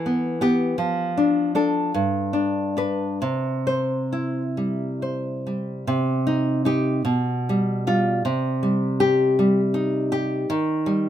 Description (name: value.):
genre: romantic piece for solo classical guitar.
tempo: 43-57 BPM (dotted quarters).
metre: 6/8.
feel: rubato.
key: C major, C minor from 5.9 s.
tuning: A4 = 441 Hz.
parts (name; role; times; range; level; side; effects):
nylon-string guitar; solo; 0.0-11.1 s; G2 to C5; -20 LUFS; equal; none.
room: moderate small room reverb, RT60 0.5 s.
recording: minimal, uncompressed stereo recording.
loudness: -20 LUFS.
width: side -10 dB against mid.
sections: 0.0-5.9 A section; 5.9-11.1 B section.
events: none.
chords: 0.0 Em; 0.8 Dm/F; 2.0 G; 3.2 C; 5.9 Cm; 7.1 G7/B; 8.2 Cm; 10.5 Eb.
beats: | 0.80 1.96 | 3.24 4.61 | 5.90 7.06 | 8.25 9.38 | 10.48.